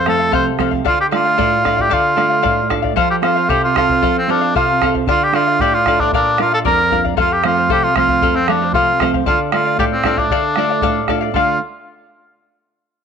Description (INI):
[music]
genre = andean folk, Andean ensemble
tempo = 114 BPM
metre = 2/4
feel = straight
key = D minor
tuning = A4 = 440 Hz
[part]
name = warm cor anglais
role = melody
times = 0.0-11.6 s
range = C4 to C5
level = -16 LUFS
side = right 1 dB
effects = none
[part]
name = charango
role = accompaniment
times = 0.0-11.6 s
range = A4 to F5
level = -19 LUFS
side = left 13 dB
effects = none
[part]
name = nylon-string guitar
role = accompaniment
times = 0.0-11.6 s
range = F2 to A4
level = -20 LUFS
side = right 10 dB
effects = none
[part]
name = bombo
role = percussion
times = 0.1-11.6 s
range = none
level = -23 LUFS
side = equal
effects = none
[sound]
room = moderate spring reverb, RT60 1.6 s, small room ambience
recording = 1960s-style stereo with parts hard left and right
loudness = -13 LUFS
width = side -7 dB against mid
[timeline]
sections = 0.0-3.0 A section; 3.0-11.3 A section; 11.3-12.4 B section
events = none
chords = 0.0 F; 0.9 Dm; 3.0 F; 5.1 Dm; 6.1 Bb; 7.2 F; 9.3 Dm